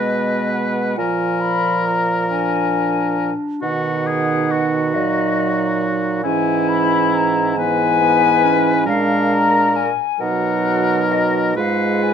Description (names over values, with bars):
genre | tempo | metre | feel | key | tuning
classical, slow romantic movement for wind quintet | 45 BPM (dotted quarters) | 6/8 | rubato | unclear | A4 = 439 Hz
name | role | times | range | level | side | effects
silver concert flute | melody | 0.0-12.1 s | Eb5 to B5 | -20 LUFS | left 6 dB | none
clear oboe | second line | 0.0-12.1 s | E4 to Cb5 | -22 LUFS | left 2 dB | none
warm French horn | accompaniment | 0.0-12.1 s | D#3 to Ab3 | -23 LUFS | right 2 dB | none
warm clarinet | accompaniment | 0.0-12.1 s | B3 to F4 | -23 LUFS | right 5 dB | none
warm bassoon | bass | 0.0-12.1 s | Ab2 to B2 | -23 LUFS | right 3 dB | none
room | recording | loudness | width
light reverb | minimal, uncompressed stereo recording | -15 LUFS | side -7 dB against mid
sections
0.0-12.1 A section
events
none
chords
0.0 Abm; 1.0 Bb7; 3.6 B; 6.2 E/G#; 8.9 Bb7; 10.2 Bmaj7; 11.6 Fdim/Ab